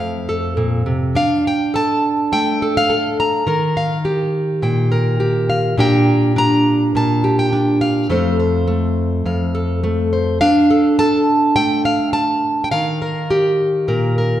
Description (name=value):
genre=folk, solo fingerstyle acoustic guitar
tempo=104 BPM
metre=4/4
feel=straight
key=unclear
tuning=A4 = 440 Hz
part: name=fingerpicked plugged-in steel-string acoustic guitar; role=solo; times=0.0-14.4 s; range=F2 to Bb5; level=-14 LUFS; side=equal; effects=none
room=wet scoring stage reverb, RT60 1.6 s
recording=recorded in a church or concert hall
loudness=-14 LUFS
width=side -12 dB against mid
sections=0.0-14.4 A section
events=none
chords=0.0 F; 1.2 Dm; 3.5 Ebadd9; 5.8 Gm; 8.1 F; 10.4 Dm; 12.7 Ebadd9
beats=0.01 0.58 | 1.16 1.74 2.31 2.89 | 3.46 4.04 4.62 5.21 | 5.79 6.37 6.95 7.53 | 8.10 8.68 9.25 9.83 | 10.40 10.98 11.56 12.14 | 12.72 13.30 13.88